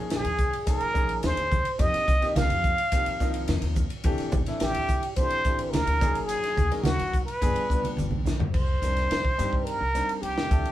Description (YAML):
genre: electric jazz fusion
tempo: 107 BPM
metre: 4/4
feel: straight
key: unclear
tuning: A4 = 439 Hz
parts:
  - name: warm grand piano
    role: accompaniment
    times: 0.0-10.7 s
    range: E3 to C5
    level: -34 LUFS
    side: left 2 dB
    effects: none
  - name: trumpet with plunger mute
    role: melody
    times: 0.1-10.7 s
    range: Gb4 to F5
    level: -27 LUFS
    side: right 1 dB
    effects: none
  - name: upright bass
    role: bass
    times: 0.1-10.6 s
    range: G1 to Bb2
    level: -30 LUFS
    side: equal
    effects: none
  - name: crisp fusion drum kit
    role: drums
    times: 0.1-10.7 s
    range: crash cymbal, hi-hat, kick drum, ride cymbal, snare drum, toms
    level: -28 LUFS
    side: equal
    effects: none
  - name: congas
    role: percussion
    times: 0.4-8.5 s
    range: none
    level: -31 LUFS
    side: right 1 dB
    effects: none
room: moderate studio reverb, RT60 0.6 s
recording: band playing live in one room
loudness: -23 LUFS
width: side -13 dB against mid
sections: 0.0-8.5 A section; 8.5-10.7 B section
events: drum fill 7.8-8.5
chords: 0.0 Eb9sus4; 1.8 F9sus4; 4.1 D9sus4; 6.0 Ab9sus4; 7.4 G7b9; 8.5 Cm9